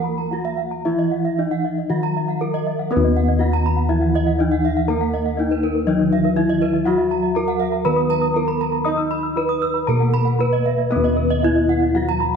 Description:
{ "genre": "Balinese gamelan", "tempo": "119 BPM", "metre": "4/4", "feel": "straight", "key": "Eb pelog", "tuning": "A4 = 440 Hz", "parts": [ { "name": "gamelan-type bronze metallophone", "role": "melody", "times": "0.0-12.4 s", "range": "Cb4-20c to Eb5", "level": "-22 LUFS", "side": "equal", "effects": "none" }, { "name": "gamelan-type bronze metallophone", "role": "accompaniment", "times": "0.0-12.4 s", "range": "Eb3 to Eb4", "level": "-26 LUFS", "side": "right 5 dB", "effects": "none" }, { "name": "gamelan-type bronze metallophone", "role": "arpeggios", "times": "0.0-12.3 s", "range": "Cb5-20c to Fb6+20c", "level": "-28 LUFS", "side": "left 6 dB", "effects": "none" }, { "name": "gamelan-type bronze metallophone", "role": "arpeggios", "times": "0.0-12.2 s", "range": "Bb4-30c to Fb6+20c", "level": "-26 LUFS", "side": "right 7 dB", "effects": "none" }, { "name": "gamelan-type bossed gongs", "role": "bass", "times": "0.0-12.4 s", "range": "Eb2 to Eb5", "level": "-21 LUFS", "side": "left 2 dB", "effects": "none" } ], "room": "moderate scoring stage reverb, RT60 1.6 s", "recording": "none", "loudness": "-17 LUFS", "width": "side -6 dB against mid", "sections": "0.0-2.9 A section; 2.9-10.9 B section; 10.9-12.4 C section", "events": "none", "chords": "none", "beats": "0.32 | 0.86 1.39 1.91 2.41 | 2.91 3.41 3.90 4.39 | 4.89 5.38 5.87 6.37 | 6.86 7.36 7.86 8.36 | 8.86 9.37 9.88 10.40 | 10.91 11.44 11.96" }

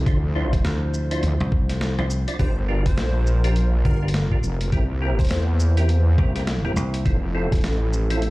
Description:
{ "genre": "glitch hop", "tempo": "103 BPM", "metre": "4/4", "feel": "swing 60% on 16ths", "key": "G dorian", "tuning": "A4 = 441 Hz", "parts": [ { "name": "dark analog pad", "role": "sustained chords", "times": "0.0-8.3 s", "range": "F3 to C5", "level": "-32 LUFS", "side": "right 1 dB", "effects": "chorus, vintage 12-bit sampler grit, sidechain pumping" }, { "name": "wobble bass", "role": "bass", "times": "0.0-8.3 s", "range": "F1 to E2", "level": "-20 LUFS", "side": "equal", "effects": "chorus, overdrive" }, { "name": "percussive tonewheel organ", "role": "stabs", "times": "0.1-8.2 s", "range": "C4 to D5", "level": "-31 LUFS", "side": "equal", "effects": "overdrive, chorus vibrato, fast rotary speaker, sidechain pumping, tape echo" }, { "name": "boom bap sampler-style drum kit", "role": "drums", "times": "0.1-8.3 s", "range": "hi-hat, rim click, shaker, snare drum", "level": "-31 LUFS", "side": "left 1 dB", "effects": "none" }, { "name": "electronic kick drum", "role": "drums", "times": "0.1-7.6 s", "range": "none", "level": "-21 LUFS", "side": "equal", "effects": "none" }, { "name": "dry thumbed slap bass", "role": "bass", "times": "0.6-7.0 s", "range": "G1 to D2", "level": "-23 LUFS", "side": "equal", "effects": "tube saturation" }, { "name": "plucky unison lead", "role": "melody", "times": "2.4-5.4 s", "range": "Bb4 to C5", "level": "-36 LUFS", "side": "left 1 dB", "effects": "tape echo" } ], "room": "digital ambience", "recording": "played on a big sound system in a bare room, large studio reverb", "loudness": "-19 LUFS", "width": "side -20 dB against mid", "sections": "0.0-8.3 A section", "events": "none", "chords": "0.1 Dm9; 2.4 Gm7; 4.7 C7; 7.1 Fmaj7", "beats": "| 0.06 0.65 1.23 1.81 | 2.39 2.98 3.56 4.14 | 4.72 5.31 5.89 6.47 | 7.05 7.64 8.22" }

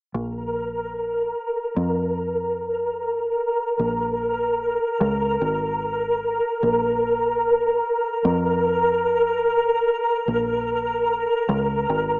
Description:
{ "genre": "trip hop", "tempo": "74 BPM", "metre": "4/4", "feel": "straight", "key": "Bb minor", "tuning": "A4 = 441 Hz", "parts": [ { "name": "deep dub fingered electric bass", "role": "bass", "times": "0.1-12.2 s", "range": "Ab1 to F2", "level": "-26 LUFS", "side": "equal", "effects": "none" }, { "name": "flickering grainy texture", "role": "texture", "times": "0.4-12.2 s", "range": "Bb4", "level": "-21 LUFS", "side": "equal", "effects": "built-in reverb, wide subtle chorus" } ], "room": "wet lush hall reverb, RT60 3.2 s", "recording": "dreamy mix soaked in reverb, small speaker sound", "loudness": "-20 LUFS", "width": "side -33 dB against mid", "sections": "0.1-12.2 A section", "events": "none", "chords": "0.1 Bb5", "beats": "| 0.14 0.95 1.76 2.57 | 3.38 4.19 5.00 5.81 | 6.62 7.43 8.24 9.05 | 9.87 10.68 11.49" }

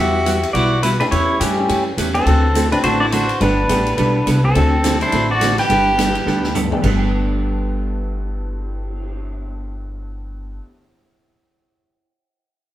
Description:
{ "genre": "country, western swing", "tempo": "210 BPM", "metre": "4/4", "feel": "swing 60% on 8ths", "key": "G major", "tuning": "A4 = 440 Hz", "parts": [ { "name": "pedal steel guitar", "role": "melody", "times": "0.0-6.5 s", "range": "C4 to G5", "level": "-19 LUFS", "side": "left 1 dB", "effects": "none" }, { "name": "clear fiddle", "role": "second line", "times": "0.0-6.5 s", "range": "G3 to G4", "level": "-23 LUFS", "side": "right 2 dB", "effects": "none" }, { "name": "vintage hollow-body jazz guitar", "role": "accompaniment", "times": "0.0-10.6 s", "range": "D3 to A4", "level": "-22 LUFS", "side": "right 2 dB", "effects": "none" }, { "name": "upright bass", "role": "bass", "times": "0.0-10.6 s", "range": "G1 to G2", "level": "-21 LUFS", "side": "equal", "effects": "none" }, { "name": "swinging big-band drum kit", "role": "drums", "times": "0.3-9.1 s", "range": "crash cymbal, cymbal swell, hi-hat, kick drum, ride cymbal, snare drum, toms", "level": "-26 LUFS", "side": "left 1 dB", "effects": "none" }, { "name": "bright upright piano", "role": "accompaniment", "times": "1.0-4.7, 6.7-10.7 s", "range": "G2 to G4", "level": "-28 LUFS", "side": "left 1 dB", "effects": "none" } ], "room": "moderate stone room reverb, RT60 1.0 s", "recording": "band playing live in one room", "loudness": "-15 LUFS", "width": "side -13 dB against mid", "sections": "0.0-4.5 A section; 4.5-6.8 B section; 6.8-9.1 C section", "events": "drum fill 6.3-6.8", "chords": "0.0 Emadd9; 1.1 A7/E; 2.3 D7; 3.4 Gadd9; 4.5 D7; 5.7 Gadd9", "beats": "0.26 0.55 0.83 | 1.12 1.40 1.69 1.98 | 2.26 2.55 2.83 3.12 | 3.41 3.69 3.98 4.26 | 4.55 4.84 5.12 5.41 | 5.69 5.98 6.27 6.55 | 6.84 7.12 7.41 7.70 | 7.98 8.27 8.55 8.84" }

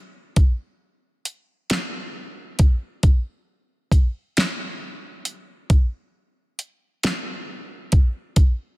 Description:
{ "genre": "R&B", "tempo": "45 BPM (dotted quarters)", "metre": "6/8", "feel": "straight", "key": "none", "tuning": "none", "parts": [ { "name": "smooth R&B drum kit", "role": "drums", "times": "0.4-8.6 s", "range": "hi-hat, kick drum, snare drum", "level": "-18 LUFS", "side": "equal", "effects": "none" } ], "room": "little or no reverb", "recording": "dense, heavily limited modern master", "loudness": "-20 LUFS", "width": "side -20 dB against mid", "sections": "0.0-8.8 A section", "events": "none", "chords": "none", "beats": "| 0.37 1.70 | 3.03 4.37 | 5.70 7.03 | 8.37" }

